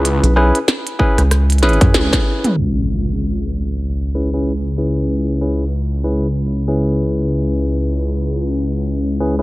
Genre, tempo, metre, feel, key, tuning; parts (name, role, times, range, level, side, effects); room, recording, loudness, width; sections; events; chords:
glitch hop; 95 BPM; 4/4; swing 58% on 16ths; C# minor pentatonic; A4 = 439 Hz
barky tine electric piano; stabs; 0.0-9.4 s; C#4 to B4; -20 LUFS; left 1 dB; vintage 12-bit sampler grit, sidechain pumping, tape echo
phased detuned saw bass; bass; 0.0-9.4 s; C#2; -18 LUFS; equal; phaser, tube saturation
glitchy drum kit; drums; 0.1-2.5 s; hi-hat, rim click, snare drum, toms; -18 LUFS; equal
rubbery square bass; bass; 0.2-1.9 s; B1 to F#2; -13 LUFS; equal
electronic kick drum; drums; 1.0-2.2 s; -15 LUFS; equal; overdrive
impact; sound effects; 2.6-5.1 s; -24 LUFS; equal
digital ambience; vinyl crackle, low-pass filter; -15 LUFS; side -19 dB against mid
0.0-2.6 A section; 2.6-9.4 B section
filter sweep on tine electric piano 0.0-2.6; drum fill 1.9-2.6; band accent 1.9-2.3; impact 2.6-5.1
0.0 C#m7